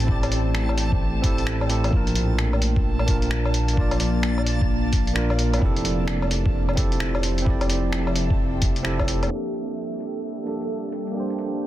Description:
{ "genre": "future garage", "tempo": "130 BPM", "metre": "4/4", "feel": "swing 63% on 16ths", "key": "G dorian", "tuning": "A4 = 440 Hz", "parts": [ { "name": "bell-like tine electric piano", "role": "accompaniment", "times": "0.0-11.7 s", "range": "Bb3 to D5", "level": "-28 LUFS", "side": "right 2 dB", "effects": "sidechain pumping, tape echo" }, { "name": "ethereal airy pad", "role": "sustained chords", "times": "0.0-11.7 s", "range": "A2 to G5", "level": "-30 LUFS", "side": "left 1 dB", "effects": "ensemble chorus, built-in reverb, phaser, sidechain pumping" }, { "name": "dark detuned saw bass", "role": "bass", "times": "0.0-9.3 s", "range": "F1 to Bb1", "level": "-24 LUFS", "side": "equal", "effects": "sidechain pumping" }, { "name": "lo-fi sampler-style drum kit", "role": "drums", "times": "0.0-11.5 s", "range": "finger snaps, hi-hat, woodblock", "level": "-29 LUFS", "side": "left 1 dB", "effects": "low-pass filter on hats, soft clipping on snare, low-pass filter on snare, low-pass filter on perc, low-pass filter on room" }, { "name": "backwards swelling texture", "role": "texture", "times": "0.0-9.3 s", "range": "A5", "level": "-36 LUFS", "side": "equal", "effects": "built-in reverb" }, { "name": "electronic kick drum", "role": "drums", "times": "0.1-9.1 s", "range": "none", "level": "-22 LUFS", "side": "equal", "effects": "none" } ], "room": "little or no reverb", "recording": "dense, heavily limited modern master, vinyl crackle, low-pass filter", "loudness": "-20 LUFS", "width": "side -14 dB against mid", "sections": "0.0-9.3 A section; 9.3-11.7 B section", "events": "filter sweep on ambient pad 9.3-11.7; filter sweep 9.3-11.7", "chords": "0.0 Am7; 1.9 Bb; 5.6 Fmaj7; 9.3 Gmadd9", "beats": "| 0.08 0.54 1.00 1.47 | 1.93 2.39 2.85 3.31 | 3.77 4.23 4.70 5.16 | 5.62 6.08 6.54 7.00 | 7.46 7.93 8.39 8.85 | 9.31 9.77 10.23 10.70 | 11.16 11.62" }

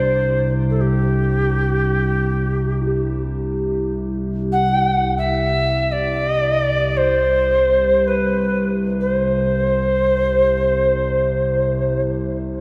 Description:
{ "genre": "world meditative, free-time meditation music", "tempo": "free time", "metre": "none", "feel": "none", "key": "C major", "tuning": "A4 = 440 Hz", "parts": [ { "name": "bright reedy Native American-style cedar flute", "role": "melody", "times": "0.0-12.0 s", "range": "G4 to F#5", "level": "-20 LUFS", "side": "equal", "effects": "tape echo" }, { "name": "warbly tape-like pad", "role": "drone", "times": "0.0-12.6 s", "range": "C2 to C3", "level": "-23 LUFS", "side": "equal", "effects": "chorus, built-in reverb" }, { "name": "bronze singing bowl", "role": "texture", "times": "0.0-12.0 s", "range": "D4 to G4", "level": "-33 LUFS", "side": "equal", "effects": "none" } ], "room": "wet plate reverb, RT60 2.9 s", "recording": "dreamy mix soaked in reverb", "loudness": "-19 LUFS", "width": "mono", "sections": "0.0-12.6 A section", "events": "none", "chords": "none", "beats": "free time" }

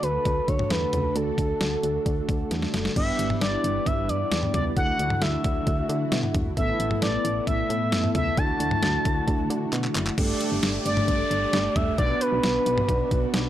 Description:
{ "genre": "synth-pop", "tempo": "133 BPM", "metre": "4/4", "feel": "straight", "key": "unclear", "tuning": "A4 = 440 Hz", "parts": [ { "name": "expressive synth lead", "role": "melody", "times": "0.0-13.5 s", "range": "A4 to A5", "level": "-27 LUFS", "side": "equal", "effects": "chorus" }, { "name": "mellow synth brass", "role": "accompaniment", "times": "0.0-13.5 s", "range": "A3 to D5", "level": "-30 LUFS", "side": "right 1 dB", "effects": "chorus" }, { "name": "string machine, cellos", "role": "sustained chords", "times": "0.0-13.5 s", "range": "D3 to B4", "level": "-32 LUFS", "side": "left 1 dB", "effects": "ensemble chorus" }, { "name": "solid FM bass", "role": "bass", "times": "0.0-13.5 s", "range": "F#1 to D3", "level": "-29 LUFS", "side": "equal", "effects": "none" }, { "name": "detuned 8-bit digital drum machine", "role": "drums", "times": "0.0-13.4 s", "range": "crash cymbal, handclaps, hi-hat, kick drum, snare drum, toms", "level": "-27 LUFS", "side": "equal", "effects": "overdrive" }, { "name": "downlifter", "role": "sound effects", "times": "10.2-13.5 s", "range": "none", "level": "-36 LUFS", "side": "equal", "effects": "none" } ], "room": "light reverb, digital ambience", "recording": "dry, gritty hardware recording", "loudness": "-22 LUFS", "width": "side -12 dB against mid", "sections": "0.0-3.0 A section; 3.0-10.2 B section; 10.2-13.5 C section", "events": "drum fill 2.5-3.0, 9.7-10.2", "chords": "0.0 D; 3.0 G6; 4.8 Dadd9; 6.6 Asus2; 8.4 Dadd9; 10.2 Gsus2; 12.0 Bm", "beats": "0.26 0.71 | 1.16 1.61 2.06 2.51 | 2.96 3.41 3.86 4.32 | 4.77 5.22 5.67 6.12 | 6.57 7.02 7.47 7.92 | 8.38 8.83 9.28 9.73 | 10.18 10.63 11.08 11.53 | 11.98 12.44 12.89 13.34" }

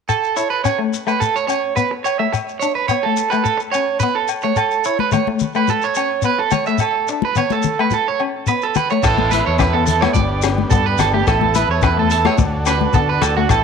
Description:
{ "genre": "highlife guitar band", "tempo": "107 BPM", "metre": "4/4", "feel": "straight", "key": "A mixolydian", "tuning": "A4 = 440 Hz", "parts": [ { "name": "electric guitar at the edge of break-up", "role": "arpeggios", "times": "0.1-13.6 s", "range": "F#4 to E5", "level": "-18 LUFS", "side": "right 8 dB", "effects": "harmonic tremolo, tape echo" }, { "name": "agogo bells", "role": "percussion", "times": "0.1-13.6 s", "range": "none", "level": "-26 LUFS", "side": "left 12 dB", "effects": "none" }, { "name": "shekere", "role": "percussion", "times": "0.1-13.6 s", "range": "none", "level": "-23 LUFS", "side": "left 5 dB", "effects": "none" }, { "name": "electric guitar at the edge of break-up", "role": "accompaniment", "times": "0.4-13.4 s", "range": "A3 to E4", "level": "-23 LUFS", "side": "left 11 dB", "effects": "tremolo" }, { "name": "congas", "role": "percussion", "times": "5.0-13.4 s", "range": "none", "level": "-23 LUFS", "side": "left 11 dB", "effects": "none" }, { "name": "overdriven combo organ", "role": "sustained chords", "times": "9.0-13.6 s", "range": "B3 to A4", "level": "-24 LUFS", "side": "equal", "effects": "none" }, { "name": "fingered electric bass", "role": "bass", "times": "9.0-13.6 s", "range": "G1 to D3", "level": "-20 LUFS", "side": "equal", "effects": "none" }, { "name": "crunchy breakbeat drum kit", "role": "drums", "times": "9.0-13.6 s", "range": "crash cymbal, hi-hat, kick drum, rim click", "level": "-22 LUFS", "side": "left 2 dB", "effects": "none" } ], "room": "moderate plate reverb, RT60 1.7 s, studio reverb", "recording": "1960s-style stereo with parts hard left and right", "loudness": "-15 LUFS", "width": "side -6 dB against mid", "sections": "0.1-9.0 A section; 9.0-13.6 B section", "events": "none", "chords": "0.1 A; 2.3 Aadd9; 4.6 A; 6.8 Aadd9; 9.0 Asus2; 10.2 G; 11.3 Asus2; 12.4 D", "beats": "| 0.10 0.66 1.22 1.78 | 2.33 2.90 3.46 4.01 | 4.57 5.13 5.69 6.25 | 6.81 7.37 7.93 8.49 | 9.04 9.60 10.16 10.72 | 11.27 11.83 12.39 12.94 | 13.50" }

